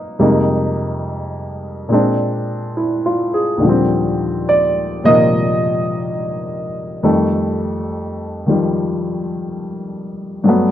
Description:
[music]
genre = solo jazz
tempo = 70 BPM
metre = 4/4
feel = swing 69% on 8ths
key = unclear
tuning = A4 = 440 Hz
[part]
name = dark baby grand piano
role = solo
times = 0.0-10.7 s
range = Eb2 to D#5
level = -15 LUFS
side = equal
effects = none
[sound]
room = studio ambience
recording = dry, close 1970s-style studio recording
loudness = -15 LUFS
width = side -11 dB against mid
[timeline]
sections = 0.0-10.7 A section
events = grand piano solo 0.0-10.7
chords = 0.2 Fm11; 1.9 Bb9; 3.6 Ebmaj13; 7.0 F9

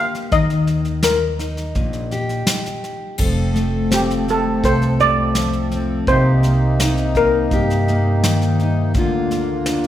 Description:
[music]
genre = acoustic folk duo or small band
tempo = 83 BPM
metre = 4/4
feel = straight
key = F mixolydian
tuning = A4 = 440 Hz
[part]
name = steel pan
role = melody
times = 0.0-8.6 s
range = G4 to F5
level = -19 LUFS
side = equal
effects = none
[part]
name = fingerpicked steel-string acoustic guitar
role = accompaniment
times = 0.0-9.9 s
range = F2 to A4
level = -20 LUFS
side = left 2 dB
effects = none
[part]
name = soft brush drum kit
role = drums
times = 0.1-9.9 s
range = crash cymbal, kick drum, snare drum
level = -23 LUFS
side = equal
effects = none
[part]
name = upright bass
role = bass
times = 0.3-9.9 s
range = F1 to G2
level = -21 LUFS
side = right 1 dB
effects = none
[part]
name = accordion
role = sustained chords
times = 3.2-9.9 s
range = C3 to A4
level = -26 LUFS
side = equal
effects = light tremolo tuning
[sound]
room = wet concert hall reverb, RT60 2.3 s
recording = recorded in a church or concert hall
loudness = -15 LUFS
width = side -12 dB against mid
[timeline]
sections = 0.0-3.2 A section; 3.2-9.9 B section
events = none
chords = 0.3 Eb; 3.2 F; 6.1 Cm7; 9.0 Bb/D

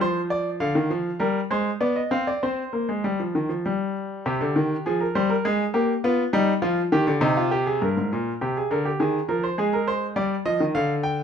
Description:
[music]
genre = classical, baroque-style two-part invention for grand piano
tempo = 101 BPM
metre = 3/4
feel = straight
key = C minor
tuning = A4 = 438 Hz
[part]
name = bright concert grand piano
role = solo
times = 0.0-11.2 s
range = G2 to G5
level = -21 LUFS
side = equal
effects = none
[sound]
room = light reverb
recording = dark, warm production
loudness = -21 LUFS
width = side -7 dB against mid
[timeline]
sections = 0.0-4.3 A section; 4.3-7.8 B section; 7.8-11.2 A section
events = none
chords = 0.0 Dm/F; 0.6 Dm7b5 (rootless); 1.8 Bdim; 2.4 C5; 4.3 Cm; 5.4 Absus2; 6.0 G7; 7.2 Cm; 7.8 Gmadd11; 9.0 Ab/Eb; 9.6 D(b5, no3)/Ab

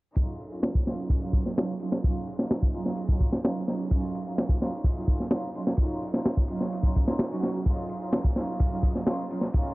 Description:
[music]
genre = breakbeat, breaks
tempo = 128 BPM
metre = 4/4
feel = straight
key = Eb minor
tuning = A4 = 440 Hz
[part]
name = rich studio string section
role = stabs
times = 0.2-9.7 s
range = Gb3 to Gb4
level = -32 LUFS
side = right 2 dB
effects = vintage 12-bit sampler grit, low-pass filter, analog delay
[part]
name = crunchy breakbeat drum kit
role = drums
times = 0.2-9.7 s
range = hi-hat, kick drum, ride cymbal, snare drum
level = -25 LUFS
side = equal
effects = none
[part]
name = electronic hi-hat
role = drums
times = 0.2-9.7 s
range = none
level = barely audible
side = none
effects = none
[sound]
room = small room ambience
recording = dry, gritty hardware recording, cassette tape, low-pass filter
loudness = -25 LUFS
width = side -21 dB against mid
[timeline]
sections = 0.2-9.7 A section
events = filter sweep on string section 0.2-9.7; filter sweep 0.2-9.7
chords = 0.2 Ebm9

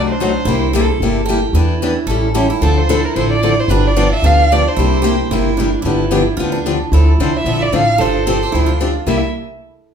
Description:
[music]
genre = acoustic string swing (jazz manouche)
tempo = 223 BPM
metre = 4/4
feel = swing 57% on 8ths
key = C major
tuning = A4 = 439 Hz
[part]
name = picked steel-string acoustic guitar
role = second line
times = 0.0-9.2 s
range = D4 to A4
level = -21 LUFS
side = right 5 dB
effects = none
[part]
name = picked steel-string acoustic guitar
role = accompaniment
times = 0.0-9.2 s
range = C3 to A4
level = -17 LUFS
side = left 3 dB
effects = none
[part]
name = upright bass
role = bass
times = 0.0-9.2 s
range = G1 to E2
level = -17 LUFS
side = equal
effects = none
[part]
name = warm violin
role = melody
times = 0.1-9.2 s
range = A4 to F5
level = -18 LUFS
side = right 2 dB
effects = none
[sound]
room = wet large studio reverb, RT60 0.8 s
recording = band playing live in one room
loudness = -12 LUFS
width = side -7 dB against mid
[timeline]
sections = 0.0-6.9 A section; 6.9-9.1 B section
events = none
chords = 0.5 C7; 1.5 Em7; 2.1 A7; 2.6 Dm7; 3.7 G7; 4.8 C7; 5.8 G7; 6.9 Dm9; 8.0 G9sus4; 9.1 C7

